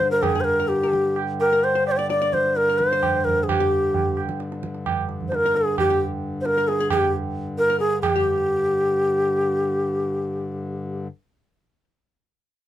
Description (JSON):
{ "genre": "indian classical, Hindustani", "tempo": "132 BPM", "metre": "5/4", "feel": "straight", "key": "G raga bhairavi", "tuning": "A4 = 439 Hz", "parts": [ { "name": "bansuri", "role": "melody", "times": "0.0-11.0 s", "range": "G4 to D5", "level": "-20 LUFS", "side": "equal", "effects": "none" }, { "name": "archtop guitar, miked and amplified", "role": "second line", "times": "0.0-11.8 s", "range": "G4 to D5", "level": "-30 LUFS", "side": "left 8 dB", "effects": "none" }, { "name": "pedal harmonium", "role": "drone", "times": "0.0-11.1 s", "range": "G2 to D3", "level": "-29 LUFS", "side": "left 2 dB", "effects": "none" }, { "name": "tabla", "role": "percussion", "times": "0.1-8.2 s", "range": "none", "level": "-27 LUFS", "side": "right 7 dB", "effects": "none" } ], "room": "light reverb", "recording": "dark, warm production", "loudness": "-20 LUFS", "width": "side -12 dB against mid", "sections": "0.0-8.0 A section; 8.0-10.3 B section", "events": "speeding up 0.0-10.3", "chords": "none" }